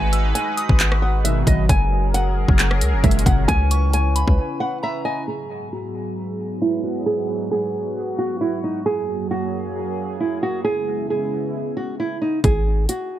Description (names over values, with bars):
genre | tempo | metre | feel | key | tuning
hip hop, trap | 134 BPM | 4/4 | half-time | G# minor | A4 = 444 Hz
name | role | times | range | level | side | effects
nylon-string guitar | melody | 0.0-13.2 s | D#4 to G#5 | -24 LUFS | right 2 dB | low-pass filter, dub echo
sweeping resonant pad | sustained chords | 0.0-12.4 s | F#2 to B4 | -27 LUFS | right 1 dB | chorus, low-pass filter
hard-hitting 808-style bass | bass | 0.0-4.4, 12.4-12.9 s | F#1 to C#2 | -19 LUFS | equal | none
soft synth bell | second line | 0.1-0.8, 3.7-5.3 s | G#5 to E6 | -31 LUFS | left 2 dB | chorus, dub echo
trap drum kit | drums | 0.1-4.4, 12.4-13.0 s | handclaps, hi-hat, kick drum, rim click | -18 LUFS | equal | overdrive
mellow synth brass | stabs | 1.2-3.5 s | A#2 to G#3 | -24 LUFS | equal | chorus
room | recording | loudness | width
digital ambience | echo-heavy mix | -18 LUFS | side -12 dB against mid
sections
0.0-5.3 A section; 5.3-12.4 B section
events
break 4.4-5.3; filter sweep 5.3-12.4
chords
0.0 G#m7; 1.7 F#add9; 3.5 C#m7; 5.3 G#m7; 8.9 F#add9; 10.6 C#m7; 12.4 Eadd9/G# (rootless)